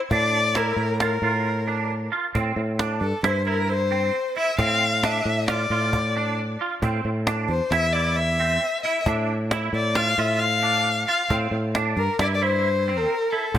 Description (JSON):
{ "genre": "progressive instrumental, band music in an uneven meter", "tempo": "134 BPM", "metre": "5/4", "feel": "straight", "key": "unclear", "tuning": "A4 = 439 Hz", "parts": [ { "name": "dark violin", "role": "melody", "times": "0.1-13.6 s", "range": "A4 to F5", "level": "-23 LUFS", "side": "left 2 dB", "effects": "digital delay" }, { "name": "clean electric guitar", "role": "arpeggios", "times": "0.1-13.6 s", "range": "C4 to F4", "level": "-27 LUFS", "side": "right 5 dB", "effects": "ensemble chorus, digital delay" }, { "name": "sustaining fretless electric bass", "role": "bass", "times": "0.1-13.6 s", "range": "E2 to A2", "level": "-25 LUFS", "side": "equal", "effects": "none" }, { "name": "cajon", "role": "drums", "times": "0.1-13.6 s", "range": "none", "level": "-28 LUFS", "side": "equal", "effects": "none" } ], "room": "moderate plate reverb, RT60 1.4 s", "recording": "bright 1980s-style digital production", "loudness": "-20 LUFS", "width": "side -11 dB against mid", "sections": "0.0-13.6 A section", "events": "none", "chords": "0.1 Bbmaj7/A; 2.4 C5; 4.6 Dm/A; 6.8 Am; 9.1 Dm/A; 11.3 C5", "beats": "| 0.11 0.56 1.01 1.46 1.90 | 2.35 2.80 3.25 3.69 4.14 | 4.59 5.04 5.48 5.93 6.38 | 6.83 7.27 7.72 8.17 8.62 | 9.06 9.51 9.96 10.41 10.86 | 11.30 11.75 12.20 12.64 13.09 | 13.54" }